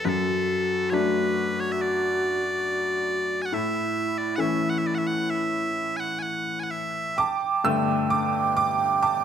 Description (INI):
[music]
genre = celtic folk, Celtic slow air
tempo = 62-70 BPM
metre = 4/4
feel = rubato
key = D major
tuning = A4 = 440 Hz
[part]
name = loud bright bagpipes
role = melody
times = 0.0-7.2 s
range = A4 to G#5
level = -28 LUFS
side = right 1 dB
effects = none
[part]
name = mellow hollow wooden flute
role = second line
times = 0.0-9.2 s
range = E4 to G5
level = -27 LUFS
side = right 3 dB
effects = none
[part]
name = bright upright piano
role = accompaniment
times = 0.0-9.2 s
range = F#2 to E6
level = -26 LUFS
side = left 2 dB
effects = none
[sound]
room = moderate recital hall reverb, RT60 1.6 s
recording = none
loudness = -23 LUFS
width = side -8 dB against mid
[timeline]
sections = 0.0-7.2 A section; 7.2-9.2 B section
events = upright piano solo 7.2-9.2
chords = 0.0 D/F#; 3.5 A; 7.2 Gsus2